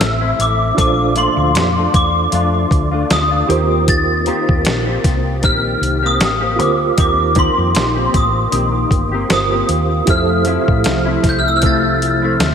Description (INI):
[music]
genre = indie pop, bedroom pop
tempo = 78 BPM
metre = 4/4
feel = swing 55% on 16ths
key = unclear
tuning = A4 = 441 Hz
[part]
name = glockenspiel with brass mallets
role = melody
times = 0.0-12.4 s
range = C6 to A6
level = -18 LUFS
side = equal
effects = ensemble chorus, slapback echo, tape echo
[part]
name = reed electric piano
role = accompaniment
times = 0.0-12.5 s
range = D4 to C5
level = -22 LUFS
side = right 7 dB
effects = fast tremolo, cassette tape, slapback echo
[part]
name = semi-hollow electric guitar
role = accompaniment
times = 0.0-12.5 s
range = Bb2 to G4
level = -20 LUFS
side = left 4 dB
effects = ensemble chorus, warbly pitch drift, slapback echo
[part]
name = hollow-body short-scale fingered electric bass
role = bass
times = 0.0-12.5 s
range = G1 to A2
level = -19 LUFS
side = equal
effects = none
[part]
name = dusty soul sampler-style drum kit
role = drums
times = 0.0-12.5 s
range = hi-hat, kick drum, snare drum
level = -18 LUFS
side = equal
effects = none
[part]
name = hollow soft pad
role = sustained chords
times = 10.1-12.5 s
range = C3 to E4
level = -21 LUFS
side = right 1 dB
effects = chorus
[sound]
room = moderate lush hall reverb, RT60 2.8 s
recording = big arena sound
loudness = -13 LUFS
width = side -7 dB against mid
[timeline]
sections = 0.0-12.5 A section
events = none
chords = 0.0 Fmaj7 (rootless); 0.8 Bbmaj7; 3.5 Eb6; 10.1 Fmaj7